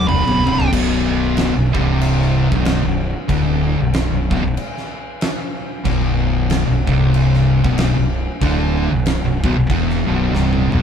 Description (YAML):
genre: stoner and doom metal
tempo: 94 BPM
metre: 4/4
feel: swing 59% on 8ths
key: unclear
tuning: A4 = 440 Hz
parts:
  - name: fuzz lead guitar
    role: melody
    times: 0.0-0.7 s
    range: B5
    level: -19 LUFS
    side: right 3 dB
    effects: wah, distortion
  - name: fuzz guitar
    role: riff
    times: 0.0-10.8 s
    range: B1 to E3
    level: -17 LUFS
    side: left 1 dB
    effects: distortion
  - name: fuzz fingered electric bass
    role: bass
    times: 0.0-10.8 s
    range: B0 to E1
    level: -20 LUFS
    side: equal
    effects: overdrive
  - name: big rock drum kit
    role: drums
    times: 0.1-10.8 s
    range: crash cymbal, kick drum, snare drum, toms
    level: -22 LUFS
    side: equal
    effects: none
room: light reverb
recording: band playing live in one room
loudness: -15 LUFS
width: side -8 dB against mid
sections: 0.7-10.8 A section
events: drum fill 0.0-0.7, 10.3-10.8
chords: 0.0 N.C.; 0.7 Bm